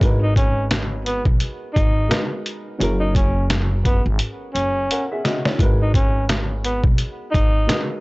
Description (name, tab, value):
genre	hip hop, boom-bap hip-hop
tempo	86 BPM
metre	4/4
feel	swing 59% on 16ths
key	G# minor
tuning	A4 = 438 Hz
part	dark upright piano	accompaniment	0.0-8.0 s	F#3 to F#5	-28 LUFS	equal	cassette tape, high-pass filter, low-pass filter
part	upright bass	bass	0.0-7.7 s	F#1 to B1	-21 LUFS	equal	none
part	trip hop sampler-style drum kit	drums	0.0-7.9 s	hi-hat, kick drum, snare drum	-19 LUFS	equal	none
part	breathy tenor saxophone	melody	0.2-7.8 s	B3 to D#4	-25 LUFS	equal	high-pass filter, low-pass filter, analog delay
room	studio ambience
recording	dry, gritty hardware recording, transformer saturation, cassette tape, nothing above 7.9 kHz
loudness	-17 LUFS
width	side -24 dB against mid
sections	0.0-8.0 A section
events	drum fill 4.9-5.6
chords	0.0 G#m7; 2.8 F#7; 5.6 G#m7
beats	| 0.01 0.71 1.41 2.10 | 2.80 3.50 4.20 4.90 | 5.59 6.29 6.99 7.69